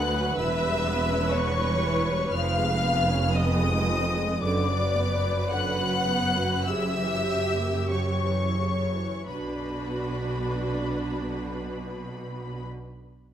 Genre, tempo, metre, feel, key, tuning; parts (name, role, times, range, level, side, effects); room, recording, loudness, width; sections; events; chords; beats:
classical, slow romantic movement for string orchestra; 42-63 BPM; 4/4; rubato; B minor; A4 = 440 Hz
rich studio violin section; melody; 0.0-12.7 s; B5 to F#6; -32 LUFS; left 4 dB
rich studio violin section; second line; 0.0-12.7 s; B4 to F#5; -31 LUFS; left 4 dB
rich studio viola section; accompaniment; 0.0-12.7 s; C#3 to B4; -30 LUFS; right 1 dB
rich studio cello section; bass; 0.0-12.7 s; D2 to B2; -30 LUFS; right 2 dB
rich studio double bass section; bass; 0.0-12.7 s; E1 to D2; -30 LUFS; right 2 dB
wet recital hall reverb, RT60 1.5 s; -24 LUFS; side -10 dB against mid
0.0-9.3 A section; 9.3-13.3 B section
slowing down 0.0-9.3
0.4 C#m7b5/E; 2.3 C#7/E#; 4.4 Bm/F#; 6.7 F#7b9; 9.3 Bm
| 0.37 1.33 2.32 3.35 | 4.42 5.50 6.66 7.90 | 9.28 10.61 11.92